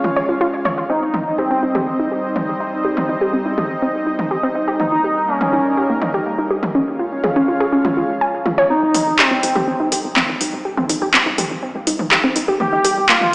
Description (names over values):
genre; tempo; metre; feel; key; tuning
melodic techno; 123 BPM; 4/4; straight; C phrygian; A4 = 441 Hz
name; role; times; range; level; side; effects
warm analog pad; sustained chords; 0.0-13.3 s; G3 to F5; -23 LUFS; equal; chorus, vintage 12-bit sampler grit
wide unison pluck; arpeggios; 0.0-13.2 s; Bb3 to Ab5; -20 LUFS; equal; dub echo
deep house drum kit; drums; 0.0-13.3 s; handclaps, hi-hat, toms; -18 LUFS; equal; overdrive, low-pass filter on toms, low-pass filter on hats, low-pass filter on snare
wide unison lead; melody; 0.9-13.3 s; C4 to G4; -19 LUFS; equal; lush chorus, dub echo
tight sequencer bass; bass; 8.8-13.3 s; C2 to Db2; -29 LUFS; equal; high-pass filter
room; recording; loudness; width
wet lush hall reverb, RT60 2.1 s; played on a big sound system in a bare room, stone room reverb, small speaker sound; -15 LUFS; side -26 dB against mid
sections
0.0-8.7 A section; 8.7-13.3 B section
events
filter sweep on analog synth lead 0.0-8.7; build-up 8.7-13.3; filter sweep on analog synth pad 8.7-13.3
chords
0.0 Db; 0.9 Cm; 4.8 Eb; 6.7 Db; 8.7 Cm; 12.6 Eb/C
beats
0.41 | 0.90 1.38 1.87 2.36 | 2.85 3.33 3.82 4.31 | 4.80 5.29 5.77 6.26 | 6.75 7.24 7.72 8.21 | 8.70 9.19 9.68 10.16 | 10.65 11.14 11.63 12.12 | 12.60 13.09